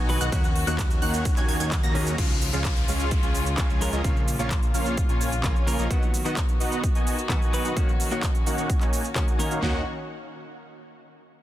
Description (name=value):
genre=EDM, festival progressive house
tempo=129 BPM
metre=4/4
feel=straight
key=Eb minor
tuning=A4 = 439 Hz
part: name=dark chamber string section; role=sustained chords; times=0.0-9.8 s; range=Db3 to F#4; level=-34 LUFS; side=left 2 dB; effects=sidechain pumping
part: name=wide unison pluck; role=arpeggios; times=0.0-2.2 s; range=F#6 to Bb6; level=-34 LUFS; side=right 1 dB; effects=sidechain pumping, dub echo
part: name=dense compressed supersaw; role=riff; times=0.0-9.8 s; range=Ab3 to Bb5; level=-30 LUFS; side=equal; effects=cassette tape, sidechain pumping, low-pass filter, dub echo
part: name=fat analog bass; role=bass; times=0.0-5.9, 9.6-9.8 s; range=Bb1 to Eb2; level=-29 LUFS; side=equal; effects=sidechain pumping
part: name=direct-recorded clean electric guitar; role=accompaniment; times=0.1-9.8 s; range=Db3 to B4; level=-33 LUFS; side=left 1 dB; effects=sidechain pumping, dub echo
part: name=big-room dance drum kit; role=drums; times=0.1-9.6 s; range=crash cymbal, handclaps, hi-hat, ride cymbal, shaker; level=-33 LUFS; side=right 1 dB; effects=none
part: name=big-room dance drum kit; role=drums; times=0.3-9.7 s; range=kick drum, snare drum, toms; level=-24 LUFS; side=equal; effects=none
part: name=downlifter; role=sound effects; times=2.2-5.9 s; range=none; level=-37 LUFS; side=left 1 dB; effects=none
room=digital ambience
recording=dense, heavily limited modern master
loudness=-22 LUFS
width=side -13 dB against mid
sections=0.0-2.2 A section; 2.2-9.6 B section; 9.6-11.4 C section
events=drop 0.0-2.2; band accent 1.7; filter sweep on supersaw synth 2.2-9.6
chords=0.3 Ebm7; 2.2 Db; 4.0 Bbm; 5.9 B; 7.8 Ebm7